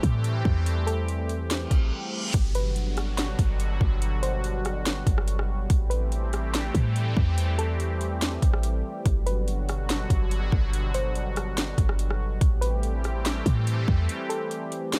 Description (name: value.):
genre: hip hop, atmospheric cloud-rap.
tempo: 143 BPM.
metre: 4/4.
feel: half-time.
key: G major.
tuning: A4 = 441 Hz.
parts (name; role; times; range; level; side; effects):
soft round pluck; melody; 0.0-14.9 s; A4 to C5; -37 LUFS; equal; chorus, tape echo.
sweeping resonant pad; sustained chords; 0.0-15.0 s; B2 to G4; -35 LUFS; equal; chorus, sidechain pumping.
clean 808-style bass; bass; 0.0-14.1 s; G1 to A2; -28 LUFS; equal; none.
trap drum kit; drums; 0.0-15.0 s; hi-hat, kick drum, rim click, snare drum; -29 LUFS; equal; none.
reverse cymbal and downlifter; sound effects; 1.7-5.7 s; none; -39 LUFS; equal; none.
room: digital ambience.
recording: none.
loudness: -26 LUFS.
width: mono.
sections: 0.0-2.3 A section; 2.3-15.0 B section.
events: reverse cymbal 1.7-2.3; break 1.9-2.3, 14.1-15.0.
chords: 0.0 Am7; 2.3 Gmaj7; 5.7 Am7; 9.1 Gmaj7; 12.4 Am7.